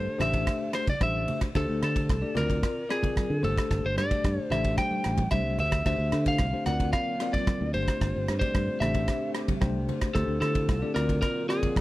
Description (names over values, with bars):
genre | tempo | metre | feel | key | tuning
electric jazz fusion | 112 BPM | 4/4 | straight | D minor | A4 = 440 Hz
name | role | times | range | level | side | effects
lightly driven lead guitar | melody | 0.0-11.8 s | Ab4 to G5 | -30 LUFS | equal | none
bell-like tine electric piano | accompaniment | 0.0-11.8 s | A3 to G5 | -33 LUFS | left 4 dB | fast stereo tremolo
fingered electric bass | bass | 0.0-11.8 s | G1 to D3 | -29 LUFS | equal | none
modern studio drum kit | drums | 0.2-11.8 s | kick drum, ride cymbal, rim click | -30 LUFS | equal | none
congas | percussion | 0.2-11.8 s | none | -35 LUFS | right 3 dB | none
chorused pulse-width pad | sustained chords | 6.3-11.8 s | D3 to G4 | -38 LUFS | right 1 dB | none
room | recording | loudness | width
little or no reverb | none | -25 LUFS | side -17 dB against mid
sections
0.0-11.8 A section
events
tine electric piano fill 9.3-10.2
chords
0.2 Am7; 1.5 D5; 2.4 Bb9/D; 3.4 Gsus24; 4.5 Am7; 5.9 Dm9; 6.7 D7alt; 7.7 G9sus4; 8.8 Am7; 10.2 Dm9; 11.0 D7alt